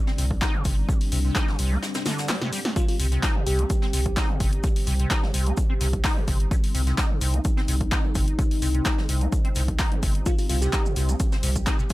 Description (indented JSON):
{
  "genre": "acid house",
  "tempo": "128 BPM",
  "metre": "4/4",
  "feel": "straight",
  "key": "C minor",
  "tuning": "A4 = 440 Hz",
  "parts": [
    { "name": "dark analog pad", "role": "sustained chords", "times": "0.0-11.9 s", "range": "G3 to G4", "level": "-33 LUFS", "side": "left 1 dB", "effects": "chorus, phaser, sidechain pumping" },
    { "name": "acid bass, square", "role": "riff", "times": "0.1-11.9 s", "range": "C3 to Eb4", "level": "-31 LUFS", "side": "equal", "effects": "overdrive, ensemble chorus, tape echo" },
    { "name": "jazz brush drum kit", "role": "drums", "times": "0.1-11.9 s", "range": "hi-hat, shaker, snare drum", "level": "-36 LUFS", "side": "left 1 dB", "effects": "high-pass filter on hats, high-pass filter on snare, high-pass filter on perc, high-pass filter on room" },
    { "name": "saturated sub bass", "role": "bass", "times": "0.2-11.9 s", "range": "G1 to C2", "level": "-24 LUFS", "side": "equal", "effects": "sidechain pumping" },
    { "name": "punchy analog drum machine", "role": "drums", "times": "0.2-11.9 s", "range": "handclaps, hi-hat, shaker, snare drum", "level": "-30 LUFS", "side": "left 1 dB", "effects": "overdrive" },
    { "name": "electronic kick drum", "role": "drums", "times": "0.3-11.9 s", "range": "none", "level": "-24 LUFS", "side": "equal", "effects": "overdrive" },
    { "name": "bell-like FM electric piano", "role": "melody", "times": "2.8-4.1, 10.3-11.1 s", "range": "F4 to G4", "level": "-32 LUFS", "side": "equal", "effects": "chorus, phaser, tape echo" }
  ],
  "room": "small room ambience",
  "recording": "none",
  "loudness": "-21 LUFS",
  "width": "side -18 dB against mid",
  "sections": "0.0-11.9 A section",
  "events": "break 1.8-2.8; drum fill 2.1-2.8",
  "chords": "0.0 C5",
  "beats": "0.42 | 0.89 1.36 1.82 2.29 | 2.76 3.23 3.70 4.17 | 4.64 5.11 5.57 6.04 | 6.51 6.98 7.45 7.92 | 8.39 8.86 9.32 9.79 | 10.26 10.73 11.20 11.67"
}